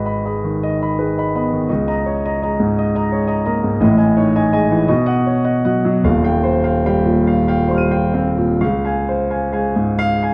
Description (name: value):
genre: classical, impressionist solo piano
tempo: 42-57 BPM (dotted quarters)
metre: 6/8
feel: rubato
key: unclear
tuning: A4 = 440 Hz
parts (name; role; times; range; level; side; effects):
- warm concert grand piano; solo; 0.0-10.3 s; Eb1 to Eb7; -17 LUFS; equal; none
room: moderate recital hall reverb, RT60 1.4 s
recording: close, detailed microphones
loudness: -17 LUFS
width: mono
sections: 0.0-10.3 A section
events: none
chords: 0.0 G#m; 1.7 C#sus2; 3.8 Amaj7#11; 4.9 Badd9; 6.0 Eb69; 8.6 Dbmaj7